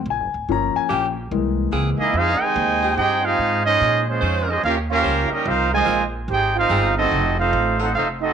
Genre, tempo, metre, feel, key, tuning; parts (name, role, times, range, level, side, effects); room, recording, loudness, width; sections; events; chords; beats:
jazz, big band swing; 145 BPM; 4/4; swing 64% on 8ths; F minor; A4 = 438 Hz
upright bass; bass; 0.0-8.3 s; D1 to Bb2; -24 LUFS; right 1 dB
warm grand piano; accompaniment; 0.1-2.1 s; E3 to Bb5; -22 LUFS; left 11 dB
bright saxophone section; sustained chords; 0.9-7.9 s; E3 to C5; -29 LUFS; right 1 dB
warm trumpet section; melody; 2.0-8.3 s; Ab3 to Ab5; -19 LUFS; right 1 dB; slapback echo
clear trombone section; second line; 2.0-8.3 s; C3 to G4; -25 LUFS; right 12 dB
moderate spring reverb, RT60 1.6 s, small room ambience; 1960s-style stereo with parts hard left and right; -17 LUFS; side -7 dB against mid
0.0-2.1 A section; 2.1-8.3 B section
grand piano solo 0.0-2.1
0.5 Gm7b5; 1.3 C7alt; 2.1 Fm9; 3.8 Bbm11; 4.6 Eb13; 5.5 Ab69; 7.1 F7b9
0.07 | 0.48 0.90 1.31 1.73 | 2.14 2.56 2.97 3.38 | 3.80 4.21 4.63 5.04 | 5.46 5.87 6.29 6.70 | 7.12 7.53 7.95